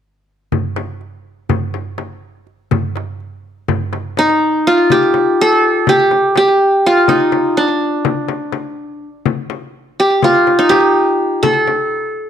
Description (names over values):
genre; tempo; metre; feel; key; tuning
Turkish makam ensemble; 247 BPM (eighths); 9/8; straight; G makam ussak; A4 = 441 Hz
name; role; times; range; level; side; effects
darbuka; percussion; 0.5-4.7 s; none; -22 LUFS; right 5 dB; none
frame drum; percussion; 0.5-11.8 s; none; -20 LUFS; left 9 dB; none
qanun; melody; 4.2-12.3 s; D4 to A4-30c; -11 LUFS; equal; slapback echo
room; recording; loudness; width
moderate echo chamber reverb, RT60 1.4 s; 1960s-style stereo; -12 LUFS; side -9 dB against mid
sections
0.5-4.9 A section; 4.9-12.3 B section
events
none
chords
none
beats
| 0.53 0.78 1.02 1.26 1.50 1.75 1.99 2.23 2.48 | 2.72 2.96 3.21 3.45 3.69 3.93 4.18 4.42 4.66 | 4.90 5.15 5.39 5.63 5.87 6.12 6.36 6.60 6.84 | 7.09 7.33 7.57 7.81 8.06 8.30 8.54 8.78 9.03 | 9.27 9.51 9.75 9.99 10.23 10.48 10.72 10.96 11.20 | 11.44 11.68 11.93 12.17